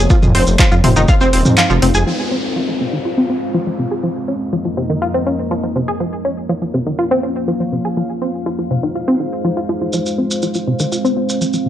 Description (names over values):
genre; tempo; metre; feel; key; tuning
melodic techno; 122 BPM; 4/4; straight; F minor; A4 = 441 Hz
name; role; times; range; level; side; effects
deep dark ambient pad; sustained chords; 0.0-11.7 s; F2 to F5; -21 LUFS; equal; chorus, built-in reverb, sidechain pumping
dark detuned saw bass; bass; 0.0-2.0 s; Eb1 to F2; -15 LUFS; equal; sidechain pumping
tight sequenced synth; arpeggios; 0.1-11.7 s; C3 to Ab5; -18 LUFS; equal; chorus, sidechain pumping, analog delay
electronic kick drum; drums; 0.1-1.2 s; none; -13 LUFS; equal; overdrive
maracas; percussion; 0.1-2.0, 9.9-11.6 s; none; -25 LUFS; right 2 dB; none
punchy analog drum machine; drums; 0.2-1.9 s; handclaps, hi-hat, toms; -16 LUFS; right 1 dB; overdrive, sidechain pumping on hats, sidechain pumping on toms
downlifter; sound effects; 2.1-6.0 s; none; -27 LUFS; left 1 dB; none
room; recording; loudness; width
light reverb; dry, gritty hardware recording; -14 LUFS; side -11 dB against mid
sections
0.0-2.1 A section; 2.1-11.7 B section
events
drop 0.0-2.1; kick drops out 1.6-2.1; band accent 1.6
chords
0.1 Ab6/F; 2.1 Fm; 4.0 Ebsus4/F; 8.0 Ab6/F; 9.9 Fm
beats
| 0.10 0.59 1.08 1.58 | 2.07 2.56 3.05 3.54 | 4.04 4.53 5.02 5.51 | 6.00 6.50 6.99 7.48 | 7.97 8.46 8.95 9.45 | 9.94 10.43 10.92 11.41